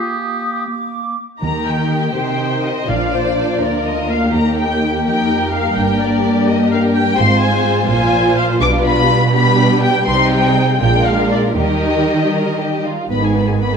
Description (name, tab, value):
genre	quick classical-period movement for symphony orchestra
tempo	77-85 BPM (dotted quarters)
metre	6/8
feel	rubato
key	Eb major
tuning	A4 = 439 Hz
part	clear clarinet	second line	0.0-1.2 s	Bb3	-27 LUFS	right 2 dB	none
part	clear oboe	second line	0.0-0.7 s	G4	-26 LUFS	right 2 dB	none
part	mellow large flute ensemble	second line	0.0-1.2 s	D6 to Eb6	-23 LUFS	right 2 dB	none
part	warm studio violin section	melody	1.4-13.8 s	C5 to D6	-19 LUFS	left 4 dB	none
part	warm studio violin section	second line	1.4-13.8 s	Eb4 to D5	-21 LUFS	left 1 dB	none
part	dark studio viola section	accompaniment	1.4-13.8 s	Eb3 to F4	-18 LUFS	equal	none
part	clear studio double bass section	bass	1.4-13.8 s	G1 to Eb2	-22 LUFS	right 3 dB	none
part	warm studio cello section	bass	1.4-13.8 s	D2 to Eb3	-20 LUFS	right 4 dB	none
part	timpani	percussion	1.4-3.6 s	Bb2 to Eb3	-29 LUFS	equal	none
part	dark French horn section	sustained chords	13.1-13.8 s	D#3 to B3	-23 LUFS	left 4 dB	none
room	wet recital hall reverb, RT60 1.5 s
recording	none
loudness	-13 LUFS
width	side -6 dB against mid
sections	0.0-1.4 A section; 1.4-13.1 B section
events	none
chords	0.0 Eb/Bb; 0.7 Bb; 1.4 Eb; 2.9 Bb; 4.3 Eb; 5.8 Gm; 7.2 Ab; 7.9 Bb5; 8.6 G7/B; 10.1 Cm; 10.8 Bb7; 11.6 Eb; 13.1 G#m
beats	0.67 | 1.42 2.17 | 2.89 3.61 | 4.33 5.06 | 5.77 6.48 | 7.19 7.89 | 8.61 9.34 | 10.07 10.82 | 11.57 12.34 | 13.10